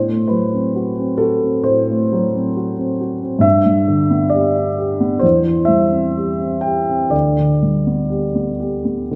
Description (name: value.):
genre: classical, romantic nocturne for solo piano.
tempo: 59-69 BPM.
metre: 4/4.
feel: rubato.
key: G major.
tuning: A4 = 445 Hz.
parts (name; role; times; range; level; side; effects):
warm grand piano; solo; 0.0-9.2 s; D2 to G5; -17 LUFS; equal; none.
room: wet recital hall reverb, RT60 1.5 s.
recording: none.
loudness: -17 LUFS.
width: mono.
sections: 0.0-9.2 A section.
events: none.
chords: 0.0 F#dim/A; 3.4 G; 5.2 C/E; 7.1 G/D.